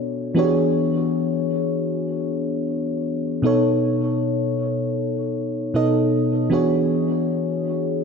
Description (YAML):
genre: R&B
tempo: 78 BPM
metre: 4/4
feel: swing 58% on 16ths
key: unclear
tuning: A4 = 440 Hz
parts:
  - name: mellow FM electric piano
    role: solo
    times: 0.0-8.0 s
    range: B2 to D#5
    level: -19 LUFS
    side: left 1 dB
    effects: chorus, diffuse ambient delay
room: moderate plate reverb, RT60 2.9 s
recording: dreamy mix soaked in reverb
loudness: -19 LUFS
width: side -5 dB against mid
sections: 0.0-8.0 A section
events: none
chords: 0.4 E13; 3.4 B9; 6.5 E13